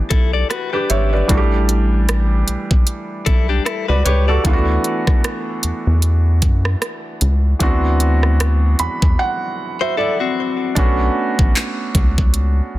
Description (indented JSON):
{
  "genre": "contemporary R&B",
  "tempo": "76 BPM",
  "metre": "4/4",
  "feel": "swing 58% on 16ths",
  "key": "unclear",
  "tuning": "A4 = 440 Hz",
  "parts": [
    { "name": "felt-muted upright piano", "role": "accompaniment", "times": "0.0-12.8 s", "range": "E3 to B5", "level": "-21 LUFS", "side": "right 2 dB", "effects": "none" },
    { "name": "rubbery square bass", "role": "bass", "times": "0.0-12.8 s", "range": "G#1 to F#2", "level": "-16 LUFS", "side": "equal", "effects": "none" },
    { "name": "direct-recorded clean electric guitar", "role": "arpeggios", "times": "0.1-4.7, 9.8-10.7 s", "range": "C4 to D5", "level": "-22 LUFS", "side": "left 8 dB", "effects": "digital delay" },
    { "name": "trap drum kit", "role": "drums", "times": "0.1-12.6 s", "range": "handclaps, hi-hat, kick drum, rim click", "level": "-17 LUFS", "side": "equal", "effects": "none" }
  ],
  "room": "digital ambience",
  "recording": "dense, heavily limited modern master",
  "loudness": "-14 LUFS",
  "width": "side -16 dB against mid",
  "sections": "0.0-10.8 A section; 10.8-12.8 B section",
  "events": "felt piano fill 8.4-10.8; break 9.2-10.8",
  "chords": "0.0 G69; 1.3 A7sus4; 4.4 D69; 7.6 D13; 10.8 Bm9"
}